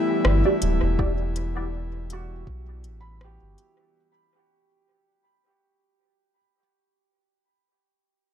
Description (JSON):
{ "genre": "ambient dub", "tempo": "81 BPM", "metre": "4/4", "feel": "swing 56% on 16ths", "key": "E minor", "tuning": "A4 = 440 Hz", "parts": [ { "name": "airy breathy pad", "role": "sustained chords", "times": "0.0-4.0 s", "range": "E3 to E4", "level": "-28 LUFS", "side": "left 5 dB", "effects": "chorus" }, { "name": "felt-muted upright piano", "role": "arpeggios", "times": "0.0-6.6 s", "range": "G3 to B5", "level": "-33 LUFS", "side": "right 7 dB", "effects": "tape echo" }, { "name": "wind-like tuned noise texture", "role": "texture", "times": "0.0-4.0 s", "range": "G4", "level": "-38 LUFS", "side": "right 8 dB", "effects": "none" }, { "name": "soft dub sub bass", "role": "bass", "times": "0.2-3.6 s", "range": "D1 to B1", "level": "-26 LUFS", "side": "equal", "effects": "tube saturation" }, { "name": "organic electronic drum kit", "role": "drums", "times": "0.2-3.7 s", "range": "hi-hat, rim click", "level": "-30 LUFS", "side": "equal", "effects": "overdrive, studio reverb, dub echo" }, { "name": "filtered dub chord stab", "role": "stabs", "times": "0.5-1.7 s", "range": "E4 to D5", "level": "-28 LUFS", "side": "right 2 dB", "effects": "phaser, analog chorus, dub echo" }, { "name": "electronic kick drum", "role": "drums", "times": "1.0-2.6 s", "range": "none", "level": "-29 LUFS", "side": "equal", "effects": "overdrive, studio reverb" } ], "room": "little or no reverb", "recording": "dark, warm production", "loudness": "-21 LUFS", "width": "side -9 dB against mid", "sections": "0.0-4.0 A section", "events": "fade-out 0.0-4.0", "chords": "0.0 Em9", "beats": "0.25 | 0.99 1.73 2.47 3.21" }